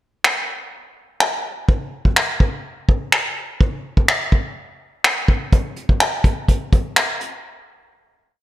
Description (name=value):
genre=pop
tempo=125 BPM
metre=4/4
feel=straight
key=none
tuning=none
part: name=vintage brush drum kit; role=drums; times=0.2-7.3 s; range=finger snaps, hi-hat, kick drum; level=-16 LUFS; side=equal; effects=gated reverb
room=light reverb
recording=bright 1980s-style digital production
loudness=-17 LUFS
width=side -14 dB against mid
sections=0.0-7.4 verse; 7.4-8.4 final hit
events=none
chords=none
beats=0.24 0.72 1.21 | 1.69 2.17 2.65 3.12 | 3.60 4.08 4.57 5.04 | 5.53 6.00 6.49 6.96